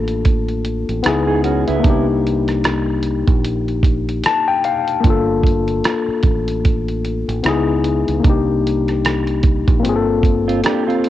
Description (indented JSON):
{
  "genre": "lo-fi hip hop",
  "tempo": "75 BPM",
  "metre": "4/4",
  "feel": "swing 58% on 16ths",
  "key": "G minor",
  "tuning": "A4 = 441 Hz",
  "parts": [
    { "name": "tine electric piano", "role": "accompaniment", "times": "0.0-11.1 s", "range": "Bb3 to A5", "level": "-18 LUFS", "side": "left 5 dB", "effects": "medium stereo tremolo, low-pass filter, cassette tape" },
    { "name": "deep dub fingered electric bass", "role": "bass", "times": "0.0-10.6 s", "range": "G1 to C#2", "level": "-22 LUFS", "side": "right 2 dB", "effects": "none" },
    { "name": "lo-fi sampler-style drum kit", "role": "drums", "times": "0.1-11.1 s", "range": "hi-hat, kick drum, rim click", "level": "-17 LUFS", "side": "right 2 dB", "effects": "cassette tape" },
    { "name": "mellow electric guitar", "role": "second line", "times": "1.3-2.1, 10.5-11.1 s", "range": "B3 to G#4", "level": "-21 LUFS", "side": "right 7 dB", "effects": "low-pass filter, cassette tape, analog delay" }
  ],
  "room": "light reverb",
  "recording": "home recording on cassette",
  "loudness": "-14 LUFS",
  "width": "side -13 dB against mid",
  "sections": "0.0-11.1 A section",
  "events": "tine electric piano fill 3.8-5.0",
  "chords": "0.0 Gm9 (rootless); 1.0 C#m9; 1.8 Cm9; 5.0 Gm9; 7.4 C#m9; 8.2 Cm9; 9.8 Gm11"
}